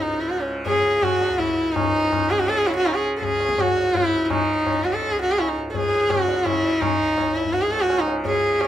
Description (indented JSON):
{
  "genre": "indian classical, Hindustani",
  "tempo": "166 BPM",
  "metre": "7/4",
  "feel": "straight",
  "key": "C# raga darbari",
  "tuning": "A4 = 437 Hz",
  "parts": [
    { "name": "rich sarangi", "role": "melody", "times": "0.0-8.7 s", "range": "C#4 to A4", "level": "-20 LUFS", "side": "equal", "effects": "none" },
    { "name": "tanpura", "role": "drone", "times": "0.0-8.7 s", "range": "C#2 to C#3", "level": "-31 LUFS", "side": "right 1 dB", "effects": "none" },
    { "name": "tabla", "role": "percussion", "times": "0.3-8.7 s", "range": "none", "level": "-27 LUFS", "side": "left 1 dB", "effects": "none" }
  ],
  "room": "light reverb",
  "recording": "minimal, uncompressed stereo recording",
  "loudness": "-19 LUFS",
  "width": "side -11 dB against mid",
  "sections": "0.0-8.7 A section",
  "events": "speeding up 0.0-8.7",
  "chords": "none"
}